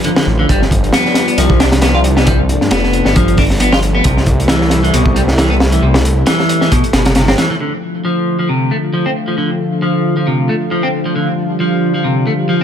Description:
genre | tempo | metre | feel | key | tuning
breakbeat, breaks | 135 BPM | 4/4 | swing 55% on 16ths | D dorian | A4 = 440 Hz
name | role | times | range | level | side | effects
lush unison pad | sustained chords | 0.0-12.6 s | D3 to B4 | -18 LUFS | left 1 dB | chorus, sidechain pumping
clean electric guitar | riff | 0.0-12.6 s | B2 to F4 | -16 LUFS | equal | overdrive, low-pass filter, tape echo
crunchy breakbeat drum kit | drums | 0.0-7.5 s | hi-hat, kick drum, snare drum | -14 LUFS | equal | none
detuned saw bass | bass | 0.3-7.3 s | F1 to G2 | -14 LUFS | equal | none
room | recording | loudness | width
studio reverb | none | -11 LUFS | side -9 dB against mid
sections
0.0-7.6 A section; 7.6-12.6 B section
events
none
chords
0.5 G7sus4; 4.0 C6; 7.6 Dm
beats
0.05 | 0.49 0.94 1.38 1.82 | 2.27 2.71 3.16 3.60 | 4.05 4.49 4.93 5.38 | 5.82 6.27 6.71 7.16 | 7.60 8.05 8.49 8.94 | 9.38 9.82 10.27 10.71 | 11.16 11.60 12.05 12.49

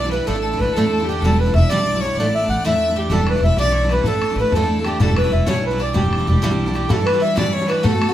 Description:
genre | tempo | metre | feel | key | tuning
celtic folk, Celtic jig | 127 BPM (dotted quarters) | 6/8 | straight | E dorian | A4 = 440 Hz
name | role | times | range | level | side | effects
accordion | melody | 0.0-8.1 s | G4 to F#5 | -21 LUFS | right 1 dB | none
clear fiddle | second line | 0.0-8.1 s | G4 to E5 | -27 LUFS | left 6 dB | none
picked steel-string acoustic guitar | accompaniment | 0.0-8.1 s | E2 to F#4 | -21 LUFS | right 1 dB | none
upright bass | bass | 0.0-6.8 s | E1 to E2 | -20 LUFS | equal | none
bodhran | percussion | 3.1-8.1 s | none | -23 LUFS | left 1 dB | none
room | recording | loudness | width
moderate stone room reverb, RT60 1.1 s | band playing live in one room | -16 LUFS | side -12 dB against mid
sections
0.0-6.9 A section; 6.9-8.1 A section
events
none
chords
0.3 Asus4; 1.2 Em7; 2.2 Asus4; 3.1 Em7; 4.1 Asus4; 5.0 Em7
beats
| 0.27 0.74 | 1.22 1.69 | 2.16 2.63 | 3.11 3.58 | 4.05 4.53 | 5.00 5.47 | 5.95 6.42 | 6.90 7.37 | 7.85

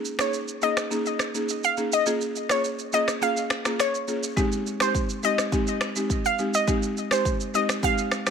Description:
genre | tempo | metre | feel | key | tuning
afrobeats | 104 BPM | 4/4 | straight | unclear | A4 = 439 Hz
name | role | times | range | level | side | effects
afro-pop drum kit | drums | 0.1-8.3 s | finger snaps, kick drum, rim click, shaker | -28 LUFS | right 1 dB | none
glassy wavetable pluck | melody | 0.2-8.2 s | C5 to F5 | -26 LUFS | left 1 dB | chorus, ping-pong delay
buzzing marimba with medium mallets | accompaniment | 0.2-8.3 s | Ab3 to Ab4 | -28 LUFS | equal | none
room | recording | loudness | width
light reverb, digital ambience | none | -22 LUFS | side -6 dB against mid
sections
0.0-8.3 A section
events
none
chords
0.0 Eb7sus4; 2.1 Bbm7; 4.4 Abmaj7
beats
0.33 0.91 1.49 | 2.06 2.64 3.22 3.79 | 4.37 4.95 5.52 6.10 | 6.68 7.25 7.83

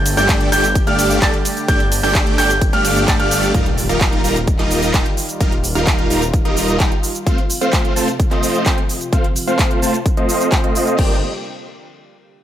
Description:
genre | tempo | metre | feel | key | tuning
EDM, festival progressive house | 129 BPM | 4/4 | straight | G minor | A4 = 441 Hz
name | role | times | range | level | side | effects
lush unison pad | sustained chords | 0.0-11.2 s | C3 to G4 | -27 LUFS | equal | chorus, vintage 12-bit sampler grit, sidechain pumping
detuned saw bass | bass | 0.0-6.9, 11.0-11.2 s | Eb1 to G1 | -23 LUFS | equal | tube saturation, sidechain pumping
big-room dance drum kit | drums | 0.1-11.1 s | crash cymbal, handclaps, hi-hat, ride cymbal, shaker | -22 LUFS | right 1 dB | none
dark grand piano | arpeggios | 0.2-3.5 s | F6 to A6 | -20 LUFS | equal | sidechain pumping, digital delay
big supersaw lead | riff | 0.2-11.2 s | G3 to Bb5 | -19 LUFS | right 1 dB | sidechain pumping, low-pass filter, digital delay
electronic kick drum | drums | 0.3-11.1 s | none | -17 LUFS | equal | overdrive
impact | sound effects | 3.6-5.4 s | none | -27 LUFS | left 1 dB | none
room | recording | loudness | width
light reverb, digital ambience | none | -14 LUFS | side -11 dB against mid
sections
0.0-3.5 A section; 3.5-11.0 B section; 11.0-12.4 C section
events
drop 0.0-3.5; impact 3.5-5.4; filter sweep on supersaw synth 3.5-11.0; filter sweep on analog synth pad 3.5-11.0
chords
0.0 Gsus2; 3.5 Ebadd9; 7.3 F; 11.0 Gm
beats
0.29 0.75 1.22 | 1.68 2.15 2.61 3.08 | 3.54 4.01 4.47 4.94 | 5.41 5.87 6.33 6.80 | 7.27 7.73 8.20 8.66 | 9.13 9.59 10.06 10.52 | 10.99

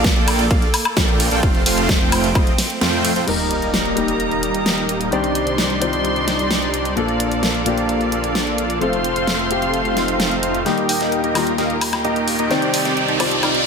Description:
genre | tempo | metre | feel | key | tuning
EDM, festival progressive house | 130 BPM | 4/4 | straight | unclear | A4 = 438 Hz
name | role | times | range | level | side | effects
warm chamber string section | sustained chords | 0.0-13.7 s | C2 to C6 | -25 LUFS | right 1 dB | sidechain pumping
dense compressed supersaw | riff | 0.0-13.6 s | G3 to Bb5 | -20 LUFS | right 1 dB | sidechain pumping, low-pass filter, ping-pong delay
wide detuned saw bass | bass | 0.0-10.6 s | Eb1 to F2 | -26 LUFS | equal | chorus, sidechain pumping
big-room dance drum kit | drums | 0.0-13.6 s | crash cymbal, hi-hat, ride cymbal, snare drum, woodblock | -22 LUFS | equal | high-pass filter on hats, studio reverb, high-pass filter on cymbals, high-pass filter on snare, high-pass filter on perc
electronic kick drum | drums | 0.0-2.4 s | none | -17 LUFS | equal | overdrive, studio reverb
dark baby grand piano | accompaniment | 3.3-13.7 s | Bb2 to D5 | -23 LUFS | left 5 dB | sidechain pumping, ping-pong delay
sub drop, swell and riser | sound effects | 3.3-5.1, 9.9-13.7 s | none | -26 LUFS | right 1 dB | none
room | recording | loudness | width
moderate lush hall reverb, RT60 1.5 s, digital ambience | none | -16 LUFS | side -5 dB against mid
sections
0.0-3.3 A section; 3.3-10.7 B section; 10.7-13.7 C section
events
drop 0.0-3.3; kick drops out 2.8-3.3; impact 3.3-5.1; swell 9.9-10.7; build-up 10.7-13.7; drum fill 10.7-13.7; filter sweep on supersaw synth 10.7-13.7; riser 12.0-13.7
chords
0.0 Bbmaj7; 1.4 F; 3.3 Eb; 5.1 Cmadd9; 7.0 Bbmaj7; 8.8 F; 10.7 Eb; 12.5 Cmadd9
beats
0.05 0.51 0.97 | 1.43 1.89 2.35 2.81 | 3.28 3.74 4.20 4.66 | 5.12 5.58 6.05 6.51 | 6.97 7.43 7.89 8.35 | 8.81 9.28 9.74 10.20 | 10.66 11.12 11.58 12.05 | 12.51 12.97 13.43

